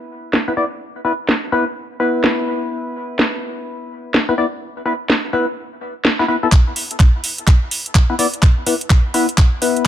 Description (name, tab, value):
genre	bass house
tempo	126 BPM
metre	4/4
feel	swing 62% on 16ths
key	unclear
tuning	A4 = 437 Hz
part	percussive organ stab	stabs	0.0-9.9 s	B3 to D5	-20 LUFS	left 2 dB	lush chorus, cassette tape, sidechain pumping, dub echo
part	garage drum kit	drums	0.3-9.8 s	handclaps, hi-hat, snare drum	-19 LUFS	equal	low-pass filter on snare, low-pass filter on hats
part	electronic kick drum	drums	6.5-9.5 s	none	-11 LUFS	equal	none
room	light reverb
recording	none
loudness	-15 LUFS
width	side -11 dB against mid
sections	0.0-6.5 A section; 6.5-9.9 B section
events	build-up 6.5-9.9; drum fill 6.5-9.9; filter sweep on synth stab 6.5-9.9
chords	0.0 E5